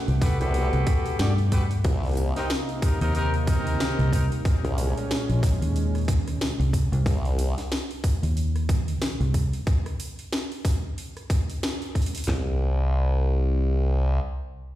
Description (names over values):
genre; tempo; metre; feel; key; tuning
glitch hop; 92 BPM; 4/4; swing 58% on 16ths; C phrygian; A4 = 445 Hz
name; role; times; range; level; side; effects
warm analog pad; sustained chords; 0.0-7.0 s; Bb2 to F#5; -32 LUFS; left 1 dB; chorus, vintage 12-bit sampler grit, sidechain pumping
fingered electric bass; bass; 0.1-9.5 s; Bb1 to G2; -23 LUFS; equal; none
drum and bass drum kit; drums; 0.1-12.3 s; hi-hat, rim click, snare drum; -33 LUFS; equal; overdrive, studio reverb
clear horn section; stabs; 0.2-4.2 s; C4 to D5; -31 LUFS; left 1 dB; vintage 12-bit sampler grit, sidechain pumping, ping-pong delay
drum and bass drum kit; drums; 0.2-12.5 s; handclaps, kick drum, snare drum, toms; -23 LUFS; equal; overdrive, studio reverb
formant-sweep wobble bass; bass; 0.4-7.5, 12.3-14.2 s; C2; -22 LUFS; equal; chorus, tube saturation
room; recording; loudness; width
little or no reverb; played on a big sound system in a bare room, large studio reverb; -22 LUFS; side -14 dB against mid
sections
0.0-12.3 A section; 12.3-14.8 B section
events
drop 0.0-12.3; band accent 11.6-12.0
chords
0.0 Gmaj9/C; 1.8 Cm7; 4.5 Bbm7; 7.1 Cm; 9.7 N.C.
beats
0.54 1.19 | 1.84 2.50 3.15 3.80 | 4.45 5.11 5.76 6.41 | 7.06 7.71 8.37 9.02 | 9.67 10.32 10.98 11.63 | 12.28 12.93 13.59